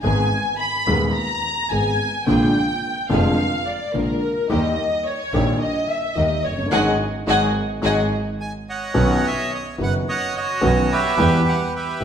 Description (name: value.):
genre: tango.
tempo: 108 BPM.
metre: 4/4.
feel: rubato.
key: G# minor, B major from 9.0 s.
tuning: A4 = 440 Hz.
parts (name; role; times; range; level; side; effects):
dark studio violin section; second line; 0.0-8.0 s; A#4 to B5; -22 LUFS; left 1 dB; none.
warm grand piano; accompaniment; 0.0-12.0 s; D#1 to G#4; -22 LUFS; left 1 dB; none.
clear symphonic string section; stabs; 0.0-12.0 s; A#3 to B4; -32 LUFS; right 2 dB; none.
clear double bass; bass; 0.0-12.0 s; E#1 to E2; -24 LUFS; right 1 dB; none.
bandoneon; melody; 8.4-12.0 s; F#4 to G#5; -22 LUFS; right 4 dB; none.
room: wet large studio reverb, RT60 1.5 s.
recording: band playing live in one room.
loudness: -18 LUFS.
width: side -8 dB against mid.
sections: 0.0-9.0 A section; 9.0-12.0 B section.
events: violin section solo 0.0-9.0; band accent 6.7-9.0.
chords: 0.0 G#m; 2.3 A#7; 4.5 D#; 6.7 G#5; 9.0 Badd9; 11.2 Em.